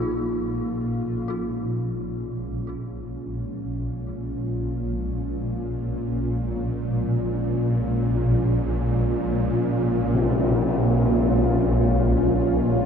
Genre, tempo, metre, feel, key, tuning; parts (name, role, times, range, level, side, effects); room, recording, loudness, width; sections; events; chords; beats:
dark ambient drone; free time; Bb minor; A4 = 444 Hz
sweeping resonant pad; sustained chords; 0.0-12.9 s; Bb2 to F4; -28 LUFS; equal; chorus
dark detuned synth bell; arpeggios; 0.0-12.9 s; Db4 to Ab4; -33 LUFS; left 1 dB; chorus, ping-pong delay
swarming drone; drone; 0.0-12.9 s; Bb1 to Bb2; -23 LUFS; equal; built-in reverb
tam-tam; percussion; 10.1-10.3 s; -26 LUFS; left 4 dB; low-pass filter on cymbals
wet cathedral reverb, RT60 6.6 s; -21 LUFS; side -7 dB against mid
0.0-12.9 A section
fade-in on analog synth pad 0.0-12.9; fade-in on drum 0.0-12.9; filter sweep on synth drone 0.0-12.9
0.0 Bbm
free time